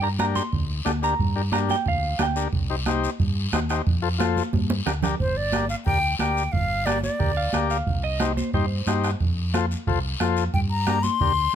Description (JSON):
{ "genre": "latin, cumbia", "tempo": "180 BPM", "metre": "4/4", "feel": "straight", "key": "G minor", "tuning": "A4 = 440 Hz", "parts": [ { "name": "semi-hollow electric guitar", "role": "second line", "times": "0.0-2.4, 7.4-9.2 s", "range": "C5 to C6", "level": "-27 LUFS", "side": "right 4 dB", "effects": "none" }, { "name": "combo organ", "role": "accompaniment", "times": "0.0-11.3 s", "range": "D4 to D5", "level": "-28 LUFS", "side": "left 6 dB", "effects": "none" }, { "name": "fingered electric bass", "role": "bass", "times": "0.0-11.5 s", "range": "G1 to G2", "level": "-26 LUFS", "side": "equal", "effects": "none" }, { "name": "bombo", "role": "percussion", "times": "0.2-11.4 s", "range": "none", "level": "-27 LUFS", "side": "right 3 dB", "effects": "none" }, { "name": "congas", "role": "percussion", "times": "0.2-11.2 s", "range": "none", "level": "-29 LUFS", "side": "right 2 dB", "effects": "none" }, { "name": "guiro", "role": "percussion", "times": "0.2-11.5 s", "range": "none", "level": "-36 LUFS", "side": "left 5 dB", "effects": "none" }, { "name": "breathy silver concert flute", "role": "melody", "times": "5.2-7.7, 10.5-11.6 s", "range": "C5 to C6", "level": "-24 LUFS", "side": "left 2 dB", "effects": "none" } ], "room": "light reverb", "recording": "close, detailed microphones", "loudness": "-21 LUFS", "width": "side -9 dB against mid", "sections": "0.0-5.2 A section; 5.2-11.6 B section", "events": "clean electric guitar solo 0.0-5.2; drum fill 4.5-5.2", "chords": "0.0 Gm; 2.5 Cm; 3.9 F; 4.5 Gm; 5.2 Gm7; 7.9 Cm; 9.2 F; 10.5 Gm", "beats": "0.20 0.53 0.86 | 1.20 1.53 1.86 2.20 | 2.53 2.87 3.20 3.53 | 3.87 4.20 4.53 4.87 | 5.20 5.54 5.87 6.20 | 6.54 6.87 7.21 7.54 | 7.87 8.21 8.54 8.87 | 9.21 9.54 9.87 10.21 | 10.54 10.87 11.21 11.54" }